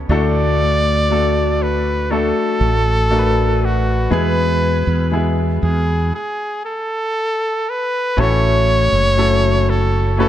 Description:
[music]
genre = pop ballad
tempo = 60 BPM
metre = 4/4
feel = straight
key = A major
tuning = A4 = 442 Hz
[part]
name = clear upright piano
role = accompaniment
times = 0.0-10.3 s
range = A2 to B4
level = -19 LUFS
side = left 3 dB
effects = none
[part]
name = mellow fretless electric bass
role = bass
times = 0.0-10.3 s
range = F#1 to E2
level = -17 LUFS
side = right 1 dB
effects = none
[part]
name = clear flugelhorn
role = melody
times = 0.1-10.3 s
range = F#4 to D5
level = -19 LUFS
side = equal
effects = none
[sound]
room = light reverb, small room reverb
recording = none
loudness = -14 LUFS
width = side -12 dB against mid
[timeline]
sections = 0.0-8.2 A section; 8.2-10.3 B section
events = stop 6.1-8.2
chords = 0.1 D; 4.1 E; 8.2 A6

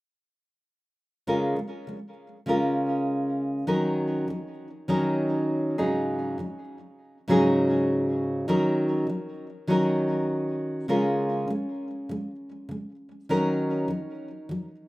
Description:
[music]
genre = pop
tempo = 100 BPM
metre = 4/4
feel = swing 60% on 16ths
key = Db major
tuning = A4 = 441 Hz
[part]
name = nylon-string guitar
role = solo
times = 1.3-14.9 s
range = Ab2 to Bb4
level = -24 LUFS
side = equal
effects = digital delay
[sound]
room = wet studio reverb, RT60 0.6 s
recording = rough home demo mix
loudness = -24 LUFS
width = side -20 dB against mid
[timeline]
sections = 1.3-10.9 A section; 10.9-14.9 B section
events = none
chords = 1.3 Db6; 3.7 Ebm7; 5.8 Ab7sus4; 8.5 Ebm7; 10.9 Db6; 13.3 Ebm7

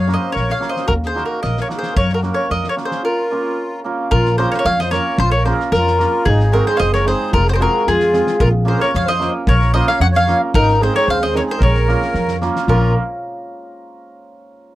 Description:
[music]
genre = balkan folk, Balkan wedding band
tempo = 112 BPM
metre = 2/4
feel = straight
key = Bb minor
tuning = A4 = 440 Hz
[part]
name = mandolin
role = melody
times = 0.0-12.9 s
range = Ab4 to Gb5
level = -18 LUFS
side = left 1 dB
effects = none
[part]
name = accordion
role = second line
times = 0.0-12.9 s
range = Eb4 to Db5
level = -24 LUFS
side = equal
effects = light tremolo tuning
[part]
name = upright bass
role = bass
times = 0.0-12.9 s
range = F1 to Gb2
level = -18 LUFS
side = equal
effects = none
[part]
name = hammered dulcimer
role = accompaniment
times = 0.1-12.9 s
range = Ab3 to Bb4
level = -22 LUFS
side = right 3 dB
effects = none
[part]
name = loose indie drum kit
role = percussion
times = 0.1-12.9 s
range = kick drum, snare drum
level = -24 LUFS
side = equal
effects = none
[sound]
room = little or no reverb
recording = none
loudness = -14 LUFS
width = side -15 dB against mid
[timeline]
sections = 0.0-4.1 A section; 4.1-12.7 B section; 12.7-13.8 C section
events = break 3.0-4.1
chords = 0.0 Gb; 0.9 Ebm; 2.0 Gb; 3.0 Bbm; 6.3 Ab; 7.3 Fm; 8.4 Bbm; 10.5 Ab; 11.6 Bbm

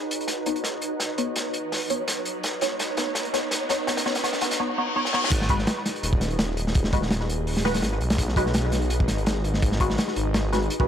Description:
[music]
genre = drum and bass, jungle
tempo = 167 BPM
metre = 4/4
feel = straight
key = G# minor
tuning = A4 = 435 Hz
[part]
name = riser and reverse cymbal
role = sound effects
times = 2.4-5.3 s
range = none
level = -33 LUFS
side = left 2 dB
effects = none
[part]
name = crunchy breakbeat drum kit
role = drums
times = 0.1-10.9 s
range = crash cymbal, hi-hat, kick drum, snare drum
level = -25 LUFS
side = equal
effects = high-pass filter on kick, high-pass filter on hats, high-pass filter on cymbals, high-pass filter on snare, high-pass filter on room
[part]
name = filtered dub chord stab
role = stabs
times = 0.5-10.9 s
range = G#3 to C#5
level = -28 LUFS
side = equal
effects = phaser, analog chorus, dub echo
[part]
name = detuned saw bass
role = bass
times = 5.3-10.9 s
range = D#1 to B1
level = -26 LUFS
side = equal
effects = none
[sound]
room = light reverb, small room reverb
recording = dry, gritty hardware recording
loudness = -22 LUFS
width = side -9 dB against mid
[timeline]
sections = 0.0-5.3 A section; 5.3-10.9 B section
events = build-up 0.0-5.3; drum fill 0.0-4.6, 5.0; filter sweep on synth stab 0.0-5.3; riser 2.4-4.6; reverse cymbal 4.6-5.3; drop 5.3-10.9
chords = 0.0 Badd9; 5.3 G#m7

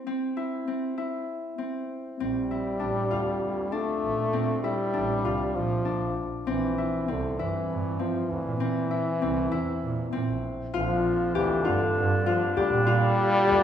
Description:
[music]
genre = contemporary instrumental, chamber music in an uneven meter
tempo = 197 BPM (eighths)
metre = 7/8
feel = straight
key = Bb lydian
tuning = A4 = 441 Hz
[part]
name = Celtic harp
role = arpeggios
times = 0.0-13.6 s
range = C4 to G4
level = -29 LUFS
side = left 2 dB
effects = none
[part]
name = warm French horn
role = second line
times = 2.2-13.6 s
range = D3 to A3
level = -28 LUFS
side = left 1 dB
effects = none
[part]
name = rich double bass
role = bass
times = 2.2-13.6 s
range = A1 to Bb2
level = -31 LUFS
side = right 4 dB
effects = none
[part]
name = warm woodwind section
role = sustained chords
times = 10.8-13.6 s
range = D3 to D4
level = -30 LUFS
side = equal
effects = none
[sound]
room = wet recital hall reverb, RT60 1.6 s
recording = recorded in a church or concert hall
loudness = -25 LUFS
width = side -9 dB against mid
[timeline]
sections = 0.0-10.7 A section; 10.7-13.6 B section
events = none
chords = 0.0 C; 2.2 Fadd9; 6.5 C9/Bb; 10.7 Bb

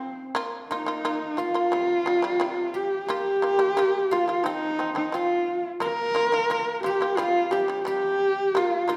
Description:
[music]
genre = mongolian traditional, Mongolian folk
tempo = 88 BPM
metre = 4/4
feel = straight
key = Bb zhi mode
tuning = A4 = 440 Hz
[part]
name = rich horsehead fiddle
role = melody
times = 0.0-9.0 s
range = C4 to Bb4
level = -26 LUFS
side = equal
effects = none
[part]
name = guzheng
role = second line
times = 0.0-9.0 s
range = C4 to Bb4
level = -36 LUFS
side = equal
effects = none
[part]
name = shamisen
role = arpeggios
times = 0.0-9.0 s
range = C3 to F4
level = -33 LUFS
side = equal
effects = none
[sound]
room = wet recital hall reverb, RT60 1.7 s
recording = none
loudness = -25 LUFS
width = mono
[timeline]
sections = 0.0-9.0 A section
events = none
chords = 0.4 Bb5; 1.7 C5; 3.1 Bb5; 4.5 F5; 5.8 Bb5; 7.2 C5

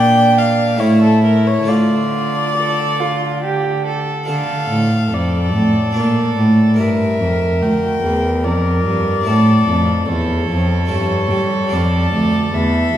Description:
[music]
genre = classical, baroque-style sonata movement with continuo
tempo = 72 BPM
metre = 3/4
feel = rubato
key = D minor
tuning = A4 = 438 Hz
[part]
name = warm violin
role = melody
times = 0.0-13.0 s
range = A4 to G5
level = -20 LUFS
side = left 2 dB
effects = none
[part]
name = rich violin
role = second line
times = 0.0-13.0 s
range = D4 to Bb4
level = -22 LUFS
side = right 3 dB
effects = none
[part]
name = harpsichord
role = accompaniment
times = 0.0-13.0 s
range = D2 to Bb4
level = -20 LUFS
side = equal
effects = none
[part]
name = warm cello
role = bass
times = 0.0-13.0 s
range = D2 to G3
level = -17 LUFS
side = right 1 dB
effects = none
[sound]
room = wet recital hall reverb, RT60 1.8 s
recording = heard from further back in the room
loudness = -13 LUFS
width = side -11 dB against mid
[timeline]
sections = 0.0-4.3 A section; 4.3-13.0 B section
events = none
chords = 0.0 Bb; 0.8 A5; 1.7 Dm; 6.0 Bb; 6.8 Edim; 9.3 A; 10.9 A7/G; 11.7 Dm

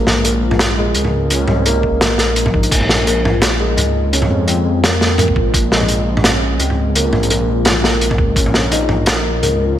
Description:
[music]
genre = half-time drum and bass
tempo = 170 BPM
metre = 4/4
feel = swing 55% on 16ths, half-time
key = unclear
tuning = A4 = 437 Hz
[part]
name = felt-muted upright piano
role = arpeggios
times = 0.0-9.8 s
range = F3 to Bb4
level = -18 LUFS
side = left 1 dB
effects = lush chorus, analog delay
[part]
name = dark detuned saw bass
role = bass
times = 0.0-9.8 s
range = Bb1 to F2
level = -18 LUFS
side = equal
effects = tube saturation
[part]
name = crunchy breakbeat drum kit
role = drums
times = 0.1-9.5 s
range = crash cymbal, hi-hat, snare drum, toms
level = -16 LUFS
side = equal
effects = none
[part]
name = electronic kick drum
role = drums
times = 1.8-2.8, 5.3-5.6, 8.1-8.4 s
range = none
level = -18 LUFS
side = equal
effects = none
[sound]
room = moderate lush hall reverb, RT60 2.0 s, small room ambience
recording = dreamy mix soaked in reverb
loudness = -12 LUFS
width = side -11 dB against mid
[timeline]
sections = 0.0-9.8 A section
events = none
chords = 0.0 Bbmadd9

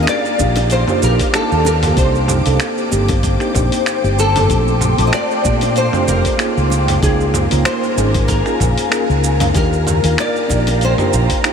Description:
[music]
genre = sunset chillout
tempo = 95 BPM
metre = 4/4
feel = swing 55% on 16ths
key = unclear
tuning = A4 = 442 Hz
[part]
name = nylon-string guitar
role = melody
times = 0.0-11.5 s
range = Ab4 to Eb5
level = -20 LUFS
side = equal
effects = ensemble chorus, analog delay
[part]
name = mellow FM electric piano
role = accompaniment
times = 0.0-11.5 s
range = A3 to Bb4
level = -20 LUFS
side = moving between left 4 dB and right 6 dB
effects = chorus, tremolo, auto-pan, analog delay
[part]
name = ethereal airy pad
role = sustained chords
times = 0.0-11.5 s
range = G4 to D6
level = -21 LUFS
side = left 2 dB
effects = ensemble chorus, built-in reverb, phaser
[part]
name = mellow fretless electric bass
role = bass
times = 0.0-11.3 s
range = F1 to Bb2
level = -16 LUFS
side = equal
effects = none
[part]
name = dusty soul sampler-style drum kit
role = drums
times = 0.1-11.5 s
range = cabasa, finger snaps, hi-hat, toms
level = -21 LUFS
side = equal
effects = none
[part]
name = electronic kick drum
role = drums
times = 0.4-11.4 s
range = none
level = -20 LUFS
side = equal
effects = none
[part]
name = bongos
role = percussion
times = 0.4-10.8 s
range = none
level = barely audible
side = none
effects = none
[sound]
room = moderate huge ambient reverb, RT60 8.2 s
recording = dreamy mix soaked in reverb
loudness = -13 LUFS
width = side -7 dB against mid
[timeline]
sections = 0.0-11.5 A section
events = none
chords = 0.0 Ebmaj9; 2.0 Cm9; 4.5 Bbmaj13; 6.7 Db6; 9.6 Ebmaj9

